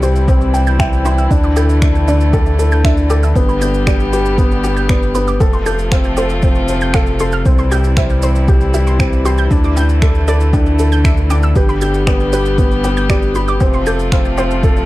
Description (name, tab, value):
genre	piano and strings electronica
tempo	117 BPM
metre	4/4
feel	straight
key	D dorian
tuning	A4 = 440 Hz
part	muted string quartet	sustained chords	0.0-14.9 s	C3 to G4	-21 LUFS	left 1 dB	sidechain pumping
part	warbly dusty pluck	arpeggios	0.0-14.4 s	B4 to G6	-24 LUFS	right 4 dB	chorus, sidechain pumping, tape echo
part	felt-muted upright piano	riff	0.0-14.9 s	B3 to G5	-18 LUFS	left 2 dB	tape echo
part	warm sub bass	bass	0.0-14.9 s	F1 to D2	-16 LUFS	equal	sidechain pumping
part	electronic shaker, woodblock and finger snaps	drums	0.0-14.9 s	none	-26 LUFS	equal	none
part	electronic kick drum	drums	0.3-14.7 s	none	-14 LUFS	equal	overdrive
room	digital ambience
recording	dark, warm production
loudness	-11 LUFS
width	side -17 dB against mid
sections	0.0-14.9 A section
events	none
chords	0.0 C; 1.3 Dsus2; 3.4 G; 5.4 F; 7.5 C; 9.5 Dsus2; 11.6 G; 13.6 F